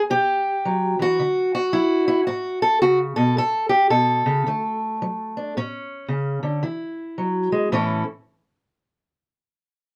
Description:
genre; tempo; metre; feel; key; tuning
acoustic country blues, solo or duo; 110 BPM; 4/4; swing 63% on 8ths; A mixolydian; A4 = 440 Hz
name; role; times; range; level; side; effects
fingerpicked steel-string acoustic guitar; solo; 0.0-8.0 s; A2 to A4; -22 LUFS; equal; none
room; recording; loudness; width
light reverb; close, detailed microphones; -22 LUFS; mono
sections
0.0-7.7 A section; 7.7-9.9 B section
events
none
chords
0.0 E5; 1.2 D; 3.4 A; 4.5 D; 5.5 A; 6.6 E; 7.7 A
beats
0.10 0.65 | 1.19 1.74 2.28 2.82 | 3.37 3.91 4.46 5.00 | 5.54 6.08 6.63 7.17 | 7.71

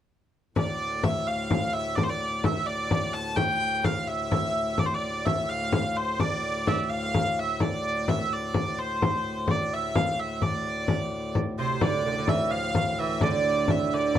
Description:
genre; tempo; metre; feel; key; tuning
medieval dance; 85 BPM (dotted quarters); 6/8; straight; D minor; A4 = 439 Hz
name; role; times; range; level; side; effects
hand-pumped harmonium; drone; 0.5-14.2 s; D2 to A2; -34 LUFS; left 2 dB; none
clear hurdy-gurdy; melody; 0.6-14.2 s; C5 to A5; -28 LUFS; right 1 dB; plate reverb
frame drum; percussion; 0.6-14.2 s; none; -26 LUFS; left 2 dB; none
lute; second line; 11.6-14.2 s; C3 to F3; -27 LUFS; right 6 dB; none
room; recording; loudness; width
moderate booth ambience, RT60 0.2 s; dark, warm production; -24 LUFS; side -10 dB against mid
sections
0.6-11.8 A section; 11.8-14.2 A section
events
none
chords
none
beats
| 0.55 1.26 | 1.96 2.67 | 3.38 4.08 | 4.79 5.49 | 6.20 6.90 | 7.60 8.31 | 9.01 9.71 | 10.42 11.12 | 11.82 12.52 | 13.22 13.92

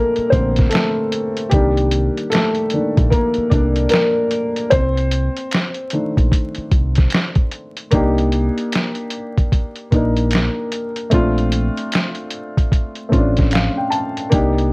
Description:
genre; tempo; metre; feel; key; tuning
lo-fi hip hop; 75 BPM; 4/4; swing 63% on 16ths; C dorian; A4 = 442 Hz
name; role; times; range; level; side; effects
dark upright piano; accompaniment; 0.0-14.7 s; D3 to A5; -18 LUFS; left 1 dB; cassette tape, low-pass filter
deep dub fingered electric bass; bass; 0.2-14.7 s; A1 to C2; -19 LUFS; equal; none
lo-fi sampler-style drum kit; drums; 0.2-14.7 s; hi-hat, kick drum, snare drum; -17 LUFS; equal; none
finger snap; percussion; 0.7-13.8 s; none; -30 LUFS; right 3 dB; none
room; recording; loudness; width
moderate studio reverb, RT60 0.6 s; worn, warbling old tape, cassette tape, vinyl crackle, warbly pitch drift; -15 LUFS; side -27 dB against mid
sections
0.0-7.9 A section; 7.9-14.7 B section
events
upright piano solo 0.0-7.9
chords
0.0 Bbmaj9; 1.5 Cm9; 4.7 Cm69; 7.9 Cm9; 11.1 Bbmaj9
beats
0.72 | 1.52 2.32 3.12 3.92 | 4.72 5.52 6.32 7.12 | 7.92 8.72 9.52 10.32 | 11.12 11.92 12.72 13.52 | 14.32

